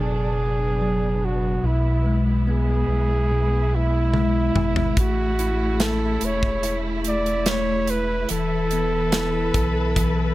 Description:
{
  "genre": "pop ballad",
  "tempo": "72 BPM",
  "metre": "4/4",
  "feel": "straight",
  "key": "A major",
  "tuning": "A4 = 440 Hz",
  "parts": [
    { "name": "warm flugelhorn", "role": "melody", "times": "0.0-10.3 s", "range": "E4 to D5", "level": "-25 LUFS", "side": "right 2 dB", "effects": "none" },
    { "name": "bell-like tine electric piano", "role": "accompaniment", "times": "0.0-10.3 s", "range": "B2 to E4", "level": "-25 LUFS", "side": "left 2 dB", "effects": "lush chorus" },
    { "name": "warm studio string section", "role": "sustained chords", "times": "0.0-10.3 s", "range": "C#3 to B4", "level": "-30 LUFS", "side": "right 1 dB", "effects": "none" },
    { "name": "warm sub bass", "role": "bass", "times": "0.0-10.3 s", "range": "E1 to B1", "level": "-25 LUFS", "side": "equal", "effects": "none" },
    { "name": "modern studio drum kit", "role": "drums", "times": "4.1-10.2 s", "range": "hi-hat, kick drum, snare drum, toms", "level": "-24 LUFS", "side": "equal", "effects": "none" }
  ],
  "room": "studio ambience",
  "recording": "none",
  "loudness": "-19 LUFS",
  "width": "side -16 dB against mid",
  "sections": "0.0-10.3 A section",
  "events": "drum fill 4.1-5.0; tine electric piano fill 10.0-10.3",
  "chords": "0.0 Bm; 1.6 E/B; 5.0 A; 8.3 Esus4",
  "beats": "0.80 | 1.64 2.47 3.30 4.13 | 4.97 5.80 6.63 7.47 | 8.30 9.13 9.97"
}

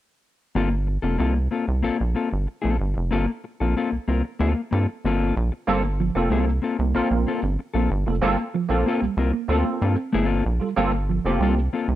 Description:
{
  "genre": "funk",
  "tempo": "94 BPM",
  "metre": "4/4",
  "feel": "straight",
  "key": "G minor",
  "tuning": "A4 = 440 Hz",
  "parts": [
    { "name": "mellow electric guitar", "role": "accompaniment", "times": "0.6-11.9 s", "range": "Bb3 to Bb4", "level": "-25 LUFS", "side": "left 5 dB", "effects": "none" },
    { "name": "rubbery square bass", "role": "bass", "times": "0.6-12.0 s", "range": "F1 to G2", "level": "-23 LUFS", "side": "equal", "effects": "none" },
    { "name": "mellow electric guitar", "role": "riff", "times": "5.7-12.0 s", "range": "F3 to C4", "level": "-27 LUFS", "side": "right 8 dB", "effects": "none" },
    { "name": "tine electric piano", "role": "stabs", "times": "5.7-11.6 s", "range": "Bb3 to C5", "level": "-26 LUFS", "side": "right 4 dB", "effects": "overdrive, ensemble chorus, plate reverb" }
  ],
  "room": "light reverb",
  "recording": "none",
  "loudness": "-21 LUFS",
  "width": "side -13 dB against mid",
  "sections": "0.6-5.7 A section; 5.7-12.0 B section",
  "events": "none",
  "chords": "0.6 Gm11",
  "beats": "| 0.57 1.21 1.85 2.49 | 3.13 3.77 4.41 5.05 | 5.68 6.32 6.96 7.60 | 8.23 8.87 9.51 10.14 | 10.78 11.41"
}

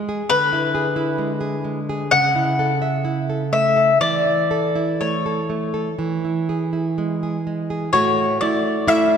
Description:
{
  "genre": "romantic duo for mandolin and classical guitar",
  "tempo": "60-70 BPM",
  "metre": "4/4",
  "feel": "rubato",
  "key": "A major",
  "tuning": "A4 = 438 Hz",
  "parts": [
    { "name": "mandolin", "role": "melody", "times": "0.0-9.2 s", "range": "B4 to F#5", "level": "-18 LUFS", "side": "left 3 dB", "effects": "none" },
    { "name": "nylon-string guitar", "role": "accompaniment", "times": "0.0-9.2 s", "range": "A2 to E5", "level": "-22 LUFS", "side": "right 2 dB", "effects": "none" }
  ],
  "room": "wet church reverb, RT60 2.7 s",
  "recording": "recorded in a church or concert hall",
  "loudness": "-18 LUFS",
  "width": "side -7 dB against mid",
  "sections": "0.0-7.9 A section; 7.9-9.2 B section",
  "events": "none",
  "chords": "0.3 E7/D; 2.1 A/C#; 4.0 A/E; 6.0 E; 7.9 A",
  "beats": "| 0.29 1.17 2.12 3.05 | 4.01 5.00 5.98 6.97 | 7.93 8.88"
}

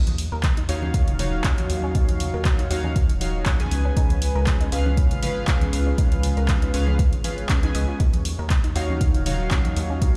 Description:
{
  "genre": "deep house",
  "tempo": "119 BPM",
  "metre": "4/4",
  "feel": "swing 54% on 16ths",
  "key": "Eb minor",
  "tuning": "A4 = 441 Hz",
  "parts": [
    { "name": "soft string machine", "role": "sustained chords", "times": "0.2-10.2 s", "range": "Gb3 to F5", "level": "-38 LUFS", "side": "equal", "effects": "none" },
    { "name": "rubbery square bass", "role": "bass", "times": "0.0-10.2 s", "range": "Eb1 to Eb2", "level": "-27 LUFS", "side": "equal", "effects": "sidechain pumping" },
    { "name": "punchy analog drum machine", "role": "drums", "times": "0.1-10.1 s", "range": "handclaps, hi-hat", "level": "-34 LUFS", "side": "equal", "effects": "none" },
    { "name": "congas", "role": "percussion", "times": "0.1-9.7 s", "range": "none", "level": "-36 LUFS", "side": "equal", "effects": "none" },
    { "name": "warbly dusty pluck", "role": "arpeggios", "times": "0.3-10.1 s", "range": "Eb3 to Eb5", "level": "-38 LUFS", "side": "equal", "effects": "chorus, sidechain pumping, dub echo" },
    { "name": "electronic kick drum", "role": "drums", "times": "0.4-10.1 s", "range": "none", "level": "-23 LUFS", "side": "equal", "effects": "none" },
    { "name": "chorused polysynth", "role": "stabs", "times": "0.7-10.2 s", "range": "Db4 to Ab5", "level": "-31 LUFS", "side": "equal", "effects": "sidechain pumping, dub echo" }
  ],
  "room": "digital ambience",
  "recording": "played on a big sound system in a bare room, large studio reverb",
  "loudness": "-22 LUFS",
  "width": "mono",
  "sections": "0.0-10.2 A section",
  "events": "none",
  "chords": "0.0 Ebm9; 3.7 Db7; 8.0 Ebm9",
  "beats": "0.44 0.94 1.45 | 1.95 2.45 2.96 3.46 | 3.97 4.47 4.97 5.48 | 5.98 6.49 6.99 7.50 | 8.00 8.50 9.01 9.51 | 10.02"
}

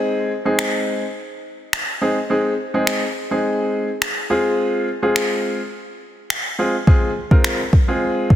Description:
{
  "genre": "dance-pop",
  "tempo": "105 BPM",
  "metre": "4/4",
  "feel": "straight",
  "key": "unclear",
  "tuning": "A4 = 440 Hz",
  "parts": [
    { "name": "warm grand piano", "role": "accompaniment", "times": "0.0-8.4 s", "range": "Ab3 to Bb4", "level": "-20 LUFS", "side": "equal", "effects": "sidechain pumping" },
    { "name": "smooth R&B drum kit", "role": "drums", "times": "0.6-8.4 s", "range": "finger snaps, kick drum", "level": "-18 LUFS", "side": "equal", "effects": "soft clipping on snare" }
  ],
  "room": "moderate lush hall reverb, RT60 2.7 s",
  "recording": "dense, heavily limited modern master",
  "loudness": "-17 LUFS",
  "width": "side -12 dB against mid",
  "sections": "0.0-8.4 A section",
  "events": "none",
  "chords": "0.0 Ab; 4.3 Fm",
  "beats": "| 0.02 0.59 1.16 1.73 | 2.30 2.87 3.44 4.02 | 4.59 5.16 5.73 6.30 | 6.87 7.45 8.02"
}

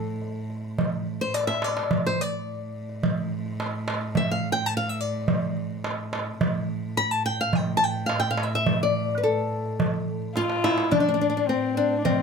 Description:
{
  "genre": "Turkish makam ensemble",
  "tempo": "106 BPM",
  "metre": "4/4",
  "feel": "straight",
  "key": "A makam ussak",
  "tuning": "A4 = 440 Hz",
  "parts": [
    { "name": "flamenco guitar", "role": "melody", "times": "0.0-12.2 s", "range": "C4 to B5-30c", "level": "-25 LUFS", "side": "left 2 dB", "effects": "none" },
    { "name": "warm cello", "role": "drone", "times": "0.0-12.2 s", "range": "A2", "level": "-32 LUFS", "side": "right 1 dB", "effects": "none" },
    { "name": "darbuka", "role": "percussion", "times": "0.1-12.2 s", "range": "none", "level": "-27 LUFS", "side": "right 3 dB", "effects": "none" },
    { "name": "dark kamancheh", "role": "second line", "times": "10.4-12.2 s", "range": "C4 to F4", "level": "-27 LUFS", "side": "left 5 dB", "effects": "none" }
  ],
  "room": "wet small room reverb, RT60 0.5 s",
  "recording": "none",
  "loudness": "-23 LUFS",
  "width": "side -5 dB against mid",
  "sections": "0.0-10.9 A section; 10.9-12.2 B section",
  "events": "drum fill 1.3-1.9, 10.4-10.9",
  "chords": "none",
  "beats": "0.22 0.78 1.34 | 1.91 2.47 3.03 3.59 | 4.15 4.72 5.28 5.84 | 6.41 6.97 7.53 8.10 | 8.66 9.23 9.79 10.36 | 10.92 11.49 12.06"
}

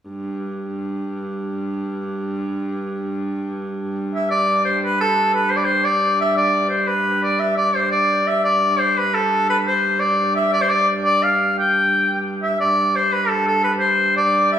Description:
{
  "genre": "medieval dance",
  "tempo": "115 BPM (dotted quarters)",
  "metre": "6/8",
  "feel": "straight",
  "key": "G major",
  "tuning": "A4 = 440 Hz",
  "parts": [
    { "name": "warm hurdy-gurdy", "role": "drone", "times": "0.1-14.6 s", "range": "G2", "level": "-25 LUFS", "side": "right 2 dB", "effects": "none" },
    { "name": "bright shawm", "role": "melody", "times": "4.2-14.6 s", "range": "A4 to G5", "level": "-16 LUFS", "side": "equal", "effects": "none" }
  ],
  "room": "wet recital hall reverb, RT60 1.6 s",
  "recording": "recorded in a church or concert hall",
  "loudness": "-17 LUFS",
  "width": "side -9 dB against mid",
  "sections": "0.1-4.3 A section; 4.3-12.6 B section; 12.6-14.6 B section",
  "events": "none",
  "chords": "none",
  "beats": "| 0.09 0.61 | 1.14 1.66 | 2.18 2.70 | 3.22 3.74 | 4.27 4.79 | 5.31 5.83 | 6.35 6.87 | 7.39 7.92 | 8.44 8.96 | 9.48 10.00 | 10.52 11.04 | 11.56 12.08 | 12.60 13.12 | 13.64 14.16"
}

